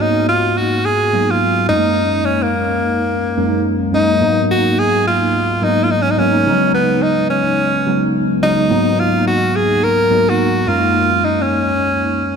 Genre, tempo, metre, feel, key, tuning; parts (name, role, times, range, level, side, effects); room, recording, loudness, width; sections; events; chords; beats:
R&B; 107 BPM; 4/4; swing 61% on 16ths; G# dorian; A4 = 440 Hz
edgy tenor saxophone; melody; 0.0-12.4 s; A#3 to A#4; -16 LUFS; equal; ping-pong delay
tine electric piano; accompaniment; 0.0-12.4 s; F#2 to F#4; -16 LUFS; right 1 dB; ensemble chorus
wet plate reverb, RT60 3.7 s; dark, warm production; -13 LUFS; side -6 dB against mid
0.0-12.4 A section
0.0 G#m9; 1.7 F#69; 4.2 G#m9; 6.5 C#7sus4; 8.7 G#m9; 10.7 F#69
0.29 0.85 1.41 | 1.97 2.53 3.09 3.65 | 4.21 4.78 5.34 5.90 | 6.46 7.02 7.58 8.14 | 8.70 9.26 9.82 10.38 | 10.94 11.51 12.07